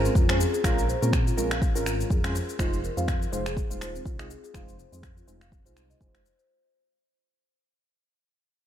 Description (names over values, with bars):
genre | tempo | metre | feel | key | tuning
afro house | 123 BPM | 4/4 | swing 56% on 16ths | F minor | A4 = 440 Hz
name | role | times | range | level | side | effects
marimba with soft mallets | arpeggios | 0.0-6.4 s | C4 to F5 | -33 LUFS | left 2 dB | sidechain pumping, ping-pong delay
warm analog keys | stabs | 0.0-6.2 s | Ab3 to Eb5 | -31 LUFS | right 2 dB | chorus, sidechain pumping, low-pass filter, ping-pong delay
dark detuned saw bass | bass | 0.0-6.3 s | Eb1 to Bb2 | -30 LUFS | equal | sidechain pumping
electronic cabasa and finger snaps | drums | 0.1-6.5 s | none | -33 LUFS | left 1 dB | none
electronic kick drum | drums | 0.2-6.1 s | none | -26 LUFS | equal | none
room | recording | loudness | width
light reverb | none | -24 LUFS | side -10 dB against mid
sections
0.0-6.5 A section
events
fade-out 0.0-6.5; filter sweep on synth keys 0.0-6.5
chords
0.0 Bbm7; 2.6 Fm7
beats
0.15 | 0.64 1.13 1.61 2.10 | 2.59 3.08 3.57 4.05 | 4.54 5.03 5.52 6.01